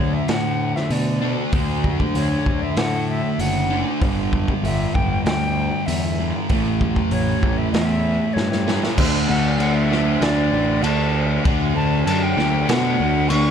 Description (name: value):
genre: rock, shoegaze and dream pop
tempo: 97 BPM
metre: 4/4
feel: straight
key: D major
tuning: A4 = 440 Hz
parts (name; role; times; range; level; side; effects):
- bright silver concert flute; melody; 0.0-13.5 s; C#5 to C#6; -26 LUFS; equal; tape echo
- fuzz guitar; riff; 0.0-13.5 s; G2 to D4; -22 LUFS; equal; distortion, wide subtle chorus
- fuzz picked electric bass; bass; 0.0-13.5 s; F#1 to B2; -23 LUFS; equal; overdrive
- raw garage drum kit; drums; 0.3-13.4 s; crash cymbal, hi-hat, kick drum, snare drum; -23 LUFS; equal; none
room: small room ambience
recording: dark, warm production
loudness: -17 LUFS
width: side -8 dB against mid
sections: 0.0-9.0 A section; 9.0-13.5 B section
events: drum fill 8.4-9.0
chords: 0.0 D; 4.0 G5; 6.5 A5; 9.0 D